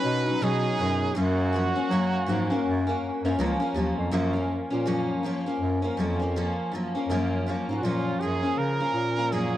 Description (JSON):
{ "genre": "indie pop, bedroom pop", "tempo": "81 BPM", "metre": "4/4", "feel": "swing 60% on 16ths", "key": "F# major", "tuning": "A4 = 440 Hz", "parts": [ { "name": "bright trumpet", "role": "melody", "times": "0.0-9.6 s", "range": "E#4 to B4", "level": "-29 LUFS", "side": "right 4 dB", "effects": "analog chorus, tape echo" }, { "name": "picked steel-string acoustic guitar", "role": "accompaniment", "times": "0.0-9.6 s", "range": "F#2 to D#4", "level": "-26 LUFS", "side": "left 2 dB", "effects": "analog chorus, warbly pitch drift" }, { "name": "breathy bass clarinet", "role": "bass", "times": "0.0-9.6 s", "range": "C#2 to F#3", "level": "-28 LUFS", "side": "equal", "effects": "none" } ], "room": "studio ambience", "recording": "dry, gritty hardware recording", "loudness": "-24 LUFS", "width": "side -13 dB against mid", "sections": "0.0-4.1 A section; 4.1-7.1 B section; 7.1-9.6 C section", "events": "none", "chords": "0.0 Badd9; 1.2 F#maj7" }